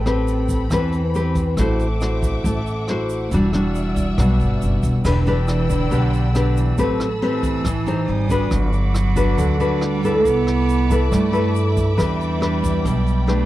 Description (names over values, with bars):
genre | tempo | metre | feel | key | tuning
bossa nova | 138 BPM | 4/4 | straight | E minor | A4 = 437 Hz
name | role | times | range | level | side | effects
nylon-string guitar | accompaniment | 0.0-13.5 s | B2 to C5 | -20 LUFS | left 1 dB | none
warm symphonic string section | sustained chords | 0.0-13.5 s | C4 to E6 | -31 LUFS | equal | none
upright bass | bass | 0.0-13.5 s | E1 to G2 | -21 LUFS | equal | none
jazz brush drum kit | drums | 0.1-13.4 s | crash cymbal, hi-hat, kick drum, rim click | -26 LUFS | equal | none
tube shaker | percussion | 0.1-13.3 s | none | -41 LUFS | right 15 dB | none
clear cello | second line | 5.0-13.5 s | D3 to B3 | -25 LUFS | right 7 dB | none
room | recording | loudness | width
small room ambience | dry, close 1970s-style studio recording | -17 LUFS | side -15 dB against mid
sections
0.0-5.1 A section; 5.1-13.5 A section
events
none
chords
0.0 Am9; 1.6 D9/A; 3.3 Em9; 5.1 Em7; 6.8 Am9; 8.1 G#maj7; 8.5 Gmaj7; 10.3 Cmaj13; 12.0 Em7